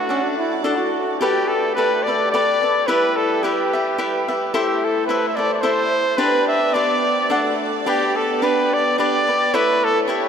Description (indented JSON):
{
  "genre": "mexican folk, mariachi",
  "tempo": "108 BPM",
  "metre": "3/4",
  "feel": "straight",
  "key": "G major",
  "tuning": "A4 = 439 Hz",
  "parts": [
    { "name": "clear trumpet", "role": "melody", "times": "0.0-10.3 s", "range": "F#4 to E5", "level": "-19 LUFS", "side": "equal", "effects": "none" },
    { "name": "cavaquinho", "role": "accompaniment", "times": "0.0-10.3 s", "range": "D4 to F#5", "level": "-21 LUFS", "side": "left 2 dB", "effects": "none" },
    { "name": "rich chamber violin section", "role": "sustained chords", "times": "0.0-10.3 s", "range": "G3 to D5", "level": "-26 LUFS", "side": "right 1 dB", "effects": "none" },
    { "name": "dark trumpet", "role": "second line", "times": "0.1-1.2 s", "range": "C#4 to F#4", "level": "-28 LUFS", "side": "right 2 dB", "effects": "none" }
  ],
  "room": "wet cathedral reverb, RT60 5.3 s",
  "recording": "in a vast, echoing space",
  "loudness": "-16 LUFS",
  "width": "side -7 dB against mid",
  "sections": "0.0-1.2 A section; 1.2-10.3 B section",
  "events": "none",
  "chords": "0.0 D; 1.2 Gadd9; 2.9 Em; 4.5 Am; 6.2 G; 7.3 D; 7.9 G; 9.5 A",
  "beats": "0.08 0.65 | 1.21 1.77 2.33 | 2.88 3.44 3.99 | 4.54 5.09 5.64 | 6.19 6.74 7.30 | 7.86 8.42 8.98 | 9.53 10.08"
}